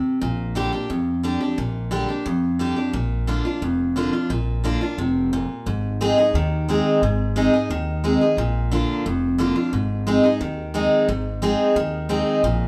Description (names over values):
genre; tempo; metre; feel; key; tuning
bluegrass; 177 BPM; 4/4; straight; Bb mixolydian; A4 = 436 Hz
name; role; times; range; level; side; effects
picked steel-string acoustic guitar; accompaniment; 0.0-12.7 s; F2 to Ab4; -23 LUFS; equal; none
upright bass; bass; 0.2-12.7 s; F1 to F2; -28 LUFS; equal; none
room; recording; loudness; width
moderate large studio reverb, RT60 1.1 s; none; -22 LUFS; mono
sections
0.0-2.9 A section; 2.9-12.7 B section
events
none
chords
0.2 Bb6; 2.9 Bb; 5.7 Ab; 8.4 Bb; 9.7 Ab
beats
| 0.22 0.56 0.90 1.24 | 1.58 1.92 2.27 2.60 | 2.94 3.29 3.62 3.96 | 4.30 4.64 4.98 5.32 | 5.66 6.00 6.34 6.68 | 7.02 7.36 7.70 8.04 | 8.38 8.72 9.06 9.39 | 9.73 10.07 10.41 10.75 | 11.09 11.43 11.76 12.10 | 12.44